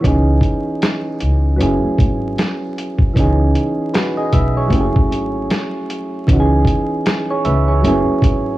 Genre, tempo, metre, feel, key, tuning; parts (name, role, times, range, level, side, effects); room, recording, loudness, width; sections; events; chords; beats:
lo-fi hip hop; 77 BPM; 4/4; swing 60% on 16ths; C# minor; A4 = 440 Hz
soft electric-piano-like synth keys; accompaniment; 0.0-8.6 s; E3 to E5; -18 LUFS; right 1 dB; chorus, low-pass filter
upright bass; bass; 0.0-8.6 s; F#1 to C#2; -17 LUFS; equal; transformer saturation
lo-fi sampler-style drum kit; drums; 0.0-8.4 s; hi-hat, kick drum, snare drum; -17 LUFS; equal
little or no reverb; dry, gritty hardware recording, vinyl crackle, small room ambience; -14 LUFS; side -16 dB against mid
0.0-8.6 A section
0.0 C#m7; 1.6 F#9sus4; 3.2 C#m7; 4.7 F#m9; 6.3 C#m7; 7.8 F#9sus4
| 0.04 0.82 1.60 2.38 | 3.16 3.94 4.72 5.50 | 6.28 7.05 7.83